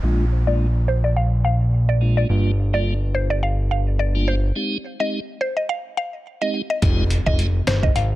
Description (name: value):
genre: dancehall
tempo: 106 BPM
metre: 4/4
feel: swing 56% on 16ths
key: F dorian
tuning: A4 = 441 Hz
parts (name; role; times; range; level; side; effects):
- tonewheel organ; accompaniment; 0.0-7.5 s; G3 to G4; -26 LUFS; right 1 dB; slow rotary speaker, sidechain pumping, low-pass filter
- fat analog bass; bass; 0.0-8.2 s; F1 to Bb1; -19 LUFS; equal; none
- downlifter and impact; sound effects; 0.0-2.3, 6.8-8.2 s; none; -34 LUFS; equal; none
- mallet-like synth pluck; melody; 0.5-8.1 s; C5 to F5; -25 LUFS; equal; chorus, low-pass filter
- trip hop sampler-style drum kit; drums; 6.8-8.1 s; hi-hat, kick drum, snare drum; -21 LUFS; equal; none
room: digital ambience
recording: none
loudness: -18 LUFS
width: side -16 dB against mid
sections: 0.0-6.8 A section; 6.8-8.2 B section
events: filter sweep 0.0-6.8; break 4.6-6.8; impact 6.8-8.2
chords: 0.0 Bb7; 2.3 Gm7; 4.6 Abmaj7; 6.8 Fm7